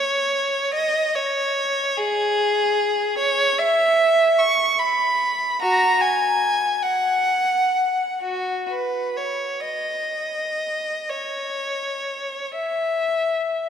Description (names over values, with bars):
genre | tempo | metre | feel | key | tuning
classical, free, expressive piece for unaccompanied violin | 31-50 BPM (dotted quarters) | 6/8 | rubato | C# dorian | A4 = 440 Hz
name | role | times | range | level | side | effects
rich violin | solo | 0.0-13.7 s | F#4 to C#6 | -19 LUFS | equal | none
room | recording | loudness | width
wet church reverb, RT60 3.5 s | none | -19 LUFS | side -8 dB against mid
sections
0.0-13.7 A section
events
none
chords
none